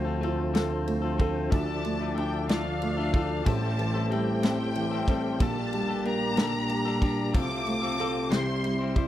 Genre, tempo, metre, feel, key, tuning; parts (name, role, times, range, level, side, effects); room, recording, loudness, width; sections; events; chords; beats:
six-eight pop ballad; 62 BPM (dotted quarters); 6/8; straight; A4 = 443 Hz
felt-muted upright piano; accompaniment; 0.0-9.1 s; A1 to A4; -30 LUFS; right 3 dB
tonewheel organ; sustained chords; 0.0-9.1 s; D2 to D5; -31 LUFS; equal; chorus vibrato, slow rotary speaker
direct-recorded clean electric guitar; arpeggios; 0.0-9.1 s; A2 to C5; -33 LUFS; left 9 dB; spring reverb
natural country drum kit; drums; 0.2-9.1 s; kick drum, ride cymbal, snare drum; -25 LUFS; equal
warm studio violin section; second line; 1.5-9.0 s; F5 to D6; -34 LUFS; left 2 dB
little or no reverb; dry, close 1970s-style studio recording; -25 LUFS; side -12 dB against mid
0.0-9.1 A section
0.0 Dm7; 1.5 Dmadd9; 3.5 Am7; 5.4 Gmadd9/Bb; 7.3 F/C; 8.3 C
0.55 | 1.52 2.49 | 3.46 4.43 | 5.41 6.38 | 7.35 8.32